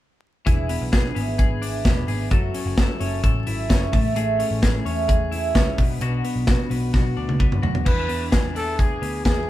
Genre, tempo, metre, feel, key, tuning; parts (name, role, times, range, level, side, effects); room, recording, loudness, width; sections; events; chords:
jangly indie pop; 130 BPM; 4/4; straight; E mixolydian; A4 = 440 Hz
picked twelve-string acoustic guitar; accompaniment; 0.5-9.5 s; B2 to A4; -29 LUFS; right 6 dB
twelve-string electric guitar; arpeggios; 0.5-9.5 s; B2 to A4; -28 LUFS; left 4 dB
vintage muted picked electric bass; bass; 0.5-9.4 s; E1 to E2; -27 LUFS; equal
modern studio drum kit; drums; 0.5-9.4 s; crash cymbal, hi-hat, kick drum, snare drum, toms; -21 LUFS; equal
breathy trumpet; melody; 7.9-9.5 s; G#4 to B4; -27 LUFS; equal
light reverb; band playing live in one room, vinyl crackle; -19 LUFS; side -14 dB against mid
0.5-7.9 A section; 7.9-9.5 B section
drum fill 6.9-7.9
0.5 E7; 2.3 F#m7; 3.9 Amaj7; 5.8 Bm; 7.9 E7